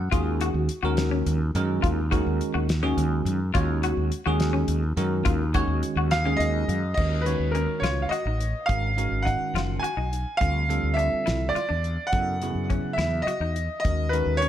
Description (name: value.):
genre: electric jazz fusion.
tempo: 70 BPM (dotted quarters).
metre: 6/8.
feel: straight.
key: Eb minor.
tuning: A4 = 440 Hz.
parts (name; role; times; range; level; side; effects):
bell-like tine electric piano; accompaniment; 0.0-14.5 s; Db3 to Gb5; -29 LUFS; right 3 dB; wide subtle chorus.
mellow fretless electric bass; bass; 0.0-14.5 s; Gb1 to Gb2; -26 LUFS; equal; none.
clean electric guitar; stabs; 0.1-14.5 s; Db4 to Gb4; -31 LUFS; left 7 dB; ensemble chorus.
damped 70s drum kit; drums; 0.1-14.5 s; crash cymbal, hi-hat, kick drum, snare drum; -29 LUFS; equal; none.
bright grand piano; melody; 6.1-14.5 s; Bb4 to Ab5; -27 LUFS; right 1 dB; tape echo.
room: light reverb.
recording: none.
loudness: -22 LUFS.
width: side -11 dB against mid.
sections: 0.0-7.0 A section; 7.0-14.5 B section.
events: none.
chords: 0.0 Ebm7; 8.7 Abm9; 10.4 Dm9; 12.1 Gbm9; 13.8 Ebm7.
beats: | 0.12 0.98 | 1.84 2.69 | 3.55 4.41 | 5.26 6.12 | 6.98 7.83 | 8.69 9.55 | 10.41 11.27 | 12.13 12.98 | 13.84.